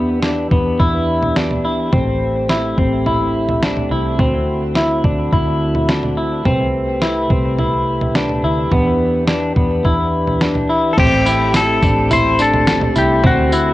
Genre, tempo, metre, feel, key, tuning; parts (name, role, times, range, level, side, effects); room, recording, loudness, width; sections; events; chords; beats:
dream pop; 106 BPM; 4/4; straight; A dorian; A4 = 440 Hz
mellow tonewheel organ; sustained chords; 0.0-13.7 s; C3 to B4; -21 LUFS; right 1 dB; slow rotary speaker, cassette tape, shimmer reverb
semi-hollow electric guitar; arpeggios; 0.0-13.7 s; B3 to E4; -18 LUFS; left 1 dB; wide subtle chorus, cassette tape, analog delay, shimmer reverb
vintage muted fingered electric bass; bass; 0.0-13.7 s; A1 to E2; -22 LUFS; equal
lo-fi sampler-style drum kit; drums; 0.2-13.7 s; crash cymbal, kick drum, snare drum, tambourine, toms; -19 LUFS; equal; cassette tape
clean lap steel guitar; melody; 10.9-13.7 s; F#4 to C5; -16 LUFS; left 2 dB; analog delay, shimmer reverb
moderate spring reverb, RT60 1.6 s, digital ambience; home recording on cassette; -13 LUFS; side -16 dB against mid
0.0-11.0 A section; 11.0-13.7 B section
0.0 Em7; 1.9 Am7; 4.2 D7; 6.5 Am7/C; 8.7 Em7; 11.0 Am7
0.23 0.79 1.36 | 1.92 2.49 3.06 3.62 | 4.19 4.75 5.32 5.89 | 6.45 7.02 7.58 8.15 | 8.72 9.28 9.85 10.41 | 10.98 11.55 12.11 12.68 | 13.24